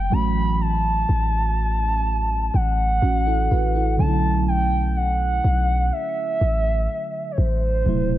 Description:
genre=contemporary R&B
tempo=62 BPM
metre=4/4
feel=straight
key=B minor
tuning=A4 = 436 Hz
part: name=gliding portamento lead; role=melody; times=0.0-8.2 s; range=C5 to B5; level=-24 LUFS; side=equal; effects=chorus
part: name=mellow FM electric piano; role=accompaniment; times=0.0-8.2 s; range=B2 to B4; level=-27 LUFS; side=right 3 dB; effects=chorus, phaser
part: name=warm 808-style bass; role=bass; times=0.0-8.2 s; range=D1 to B1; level=-21 LUFS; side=equal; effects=none
room=digital ambience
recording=none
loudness=-19 LUFS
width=side -13 dB against mid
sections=0.0-4.0 A section; 4.0-8.2 B section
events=none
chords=0.1 F#m7/A; 4.0 Bm11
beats=| 0.12 1.09 2.06 3.02 | 3.99 4.96 5.93 6.89 | 7.86

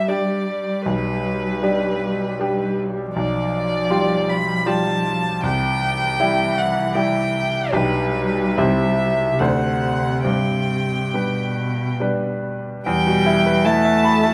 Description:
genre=classical, slow romantic movement for piano trio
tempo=67-81 BPM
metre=3/4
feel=rubato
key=G major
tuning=A4 = 440 Hz
part: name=warm violin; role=melody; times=0.0-14.3 s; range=B4 to B5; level=-26 LUFS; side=equal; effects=none
part: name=warm cello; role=second line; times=0.0-14.3 s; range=B2 to A3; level=-26 LUFS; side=equal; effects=none
part: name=bright concert grand piano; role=accompaniment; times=0.0-14.3 s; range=B1 to B5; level=-23 LUFS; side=equal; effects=none
room=moderate large studio reverb, RT60 1.1 s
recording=none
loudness=-20 LUFS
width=mono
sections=0.0-12.9 A section; 12.9-14.3 B section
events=none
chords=0.0 G5; 0.9 G/B; 3.2 G7/B; 5.4 C; 7.7 G/B; 8.6 C; 9.4 D7; 10.3 G; 12.9 Em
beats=0.08 | 0.86 1.63 2.40 | 3.17 3.92 4.67 | 5.44 6.20 6.96 | 7.73 8.58 9.40 | 10.25 11.14 12.01 | 12.86 13.65

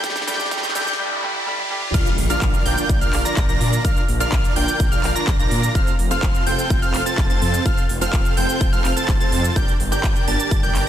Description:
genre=EDM, festival progressive house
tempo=126 BPM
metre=4/4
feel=straight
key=unclear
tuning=A4 = 440 Hz
part: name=bright baby grand piano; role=accompaniment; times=0.0-1.9 s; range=G2 to G4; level=-29 LUFS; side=right 1 dB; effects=sidechain pumping, dub echo
part: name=wide unison lead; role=arpeggios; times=0.0-10.8 s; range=F6 to Bb6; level=-25 LUFS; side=equal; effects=sidechain pumping, dub echo
part: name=dense compressed supersaw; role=riff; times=0.0-10.8 s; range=C4 to Bb5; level=-24 LUFS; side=right 1 dB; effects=sidechain pumping, dub echo
part: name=wide detuned saw bass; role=bass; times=0.0-10.8 s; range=F1 to Bb2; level=-25 LUFS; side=equal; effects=chorus, sidechain pumping, high-pass filter
part: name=big-room dance drum kit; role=drums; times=0.0-10.8 s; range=cabasa, crash cymbal, handclaps, hi-hat, snare drum, toms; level=-28 LUFS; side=right 1 dB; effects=none
part: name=electronic kick drum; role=drums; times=0.0-10.6 s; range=none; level=-20 LUFS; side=equal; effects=high-pass filter on kick
part: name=riser, noise sweep and impact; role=sound effects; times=0.0-3.8 s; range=none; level=-28 LUFS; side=left 1 dB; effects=none
room=light reverb, digital ambience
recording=dense, heavily limited modern master, high-pass filter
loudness=-17 LUFS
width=side -11 dB against mid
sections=0.0-1.9 A section; 1.9-10.9 B section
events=build-up 0.0-1.9; drum fill 0.0-1.0, 1.5-1.9; riser 0.0-1.9; filter sweep on analog synth lead 0.0-1.9; noise sweep 0.0-1.9; drop 1.9-10.9; impact 1.9-3.8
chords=0.0 F; 1.9 Bb; 5.8 F; 9.6 Gm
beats=| 0.04 0.51 0.99 1.47 | 1.94 2.42 2.89 3.37 | 3.85 4.32 4.80 5.28 | 5.75 6.23 6.70 7.18 | 7.66 8.13 8.61 9.09 | 9.56 10.04 10.51

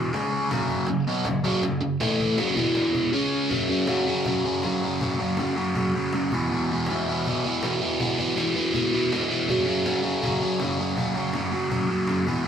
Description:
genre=garage rock duo or trio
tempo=160 BPM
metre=4/4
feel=straight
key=unclear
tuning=A4 = 441 Hz
part: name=biting overdriven guitar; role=riff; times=0.0-12.5 s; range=E2 to C#4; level=-22 LUFS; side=equal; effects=phaser
part: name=cajon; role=drums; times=0.1-12.4 s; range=none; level=-33 LUFS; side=left 1 dB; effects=none
room=moderate studio reverb, RT60 0.8 s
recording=band playing live in one room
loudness=-22 LUFS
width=side -8 dB against mid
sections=0.0-3.5 A section; 3.5-12.5 B section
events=none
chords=0.1 C#5; 0.5 F#5; 2.0 A5; 2.4 F#5; 2.6 E5; 3.1 C#5; 3.5 F#5; 6.3 E5; 9.5 F#5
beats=0.14 | 0.52 0.89 1.26 1.64 | 2.01 2.39 2.76 3.14 | 3.51 3.89 4.26 4.63 | 5.01 5.38 5.76 6.13 | 6.51 6.88 7.25 7.63 | 8.00 8.37 8.74 9.12 | 9.49 9.86 10.23 10.61 | 10.98 11.35 11.72 12.09 | 12.46

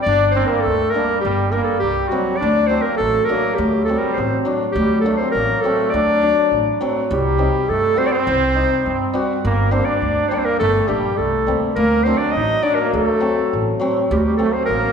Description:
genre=klezmer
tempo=103 BPM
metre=2/4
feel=straight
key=D phrygian dominant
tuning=A4 = 441 Hz
part: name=clear clarinet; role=melody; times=0.0-14.9 s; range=F#4 to Eb5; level=-20 LUFS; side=left 1 dB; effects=none
part: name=hammered dulcimer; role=accompaniment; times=0.0-14.9 s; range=F#3 to F#4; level=-23 LUFS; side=left 2 dB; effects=none
part: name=brilliant trombone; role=second line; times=0.1-14.9 s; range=F#3 to Eb4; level=-22 LUFS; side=right 2 dB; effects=none
part: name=upright bass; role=bass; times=0.1-14.9 s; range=G1 to G2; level=-22 LUFS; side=right 1 dB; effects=none
room=wet recital hall reverb, RT60 1.7 s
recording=heard from further back in the room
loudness=-16 LUFS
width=side -6 dB against mid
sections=0.0-7.1 A section; 7.1-14.9 A section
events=none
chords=0.1 Gm; 2.4 D; 7.1 Cm; 9.4 Gm; 11.8 D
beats=| 0.07 0.66 | 1.25 1.83 | 2.42 3.00 | 3.59 4.17 | 4.76 5.35 | 5.93 6.52 | 7.10 7.68 | 8.27 8.85 | 9.44 10.02 | 10.60 11.19 | 11.77 12.35 | 12.94 13.52 | 14.10 14.69

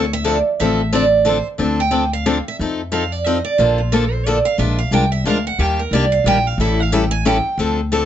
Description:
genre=acoustic string swing (jazz manouche)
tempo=180 BPM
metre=3/4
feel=swing 60% on 8ths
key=D minor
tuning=A4 = 440 Hz
part: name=picked steel-string acoustic guitar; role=second line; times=0.0-7.6 s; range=F4 to G#5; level=-19 LUFS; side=right 4 dB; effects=none
part: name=picked steel-string acoustic guitar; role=accompaniment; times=0.0-8.0 s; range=D3 to Bb4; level=-19 LUFS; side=left 4 dB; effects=none
part: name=upright bass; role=bass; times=0.0-8.1 s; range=A1 to F2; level=-20 LUFS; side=equal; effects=none
room=light reverb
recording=nothing above 7.8 kHz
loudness=-15 LUFS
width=side -10 dB against mid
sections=0.0-1.6 A section; 1.6-8.1 A section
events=steel-string acoustic guitar solo 0.0-8.1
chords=0.0 Dm7; 2.6 F7; 3.6 Bbmaj7; 4.6 Bb7; 5.6 Ebmaj7; 6.6 A7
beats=0.27 | 0.60 0.93 1.27 | 1.60 1.93 2.27 | 2.60 2.93 3.26 | 3.60 3.93 4.26 | 4.59 4.93 5.26 | 5.59 5.93 6.26 | 6.59 6.92 7.26 | 7.59 7.92

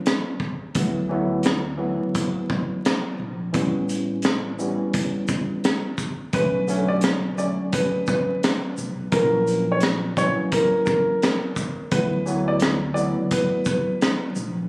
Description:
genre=hip hop, boom-bap hip-hop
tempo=86 BPM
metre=4/4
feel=swing 60% on 16ths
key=D major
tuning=A4 = 442 Hz
part: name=tine electric piano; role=accompaniment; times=0.0-14.4 s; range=D3 to C#4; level=-25 LUFS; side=equal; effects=medium stereo tremolo, cassette tape, high-pass filter, low-pass filter
part: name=crunchy breakbeat drum kit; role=drums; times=0.1-14.6 s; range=hi-hat, kick drum, rim click, shaker, snare drum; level=-24 LUFS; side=equal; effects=none
part: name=upright bass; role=bass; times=0.8-14.7 s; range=A1 to D2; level=-27 LUFS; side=equal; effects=none
part: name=warm upright piano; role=melody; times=6.3-14.7 s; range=A#4 to D5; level=-23 LUFS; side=equal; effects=high-pass filter, low-pass filter
room=light reverb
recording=recorded on a phone in the room, club reverb, vinyl crackle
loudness=-20 LUFS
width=side -27 dB against mid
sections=0.0-6.3 A section; 6.3-14.7 B section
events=none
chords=0.0 F#7; 0.8 D6; 3.5 A7; 6.3 Bm7; 9.1 F#7/A#; 11.9 D6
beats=0.06 | 0.75 1.45 2.15 2.85 | 3.54 4.24 4.94 5.64 | 6.33 7.03 7.73 8.43 | 9.12 9.82 10.52 11.22 | 11.91 12.61 13.31 14.01

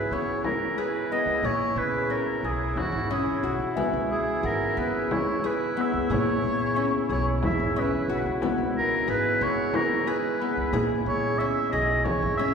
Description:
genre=contemporary instrumental, chamber music in an uneven meter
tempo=181 BPM (eighths)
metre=7/8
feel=straight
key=C# dorian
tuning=A4 = 440 Hz
part: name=warm oboe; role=melody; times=0.0-12.5 s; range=F#4 to E5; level=-28 LUFS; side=equal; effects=none
part: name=warm woodwind section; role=sustained chords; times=0.0-12.5 s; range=C#3 to E4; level=-33 LUFS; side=right 3 dB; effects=none
part: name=concert harp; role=arpeggios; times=0.0-12.5 s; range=B3 to G#4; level=-28 LUFS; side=left 2 dB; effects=none
part: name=upright bass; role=bass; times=0.0-12.5 s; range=G#1 to C#3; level=-32 LUFS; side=right 1 dB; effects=none
part: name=celesta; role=texture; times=0.0-0.2, 3.8-5.5, 10.4-11.5 s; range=E5 to B5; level=-34 LUFS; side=left 2 dB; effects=none
part: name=frame drum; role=percussion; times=0.4-12.4 s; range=none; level=-34 LUFS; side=left 1 dB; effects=none
room=wet concert hall reverb, RT60 2.3 s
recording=heard from further back in the room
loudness=-23 LUFS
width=side -6 dB against mid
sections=0.0-12.5 A section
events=none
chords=0.0 C#m7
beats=0.12 0.45 0.78 1.11 | 1.45 1.78 2.11 2.44 2.77 3.11 3.44 | 3.77 4.10 4.43 4.77 5.10 5.43 5.76 | 6.09 6.43 6.76 7.09 7.42 7.75 8.09 | 8.42 8.75 9.08 9.41 9.74 10.07 10.41 | 10.74 11.07 11.40 11.73 12.06 12.39

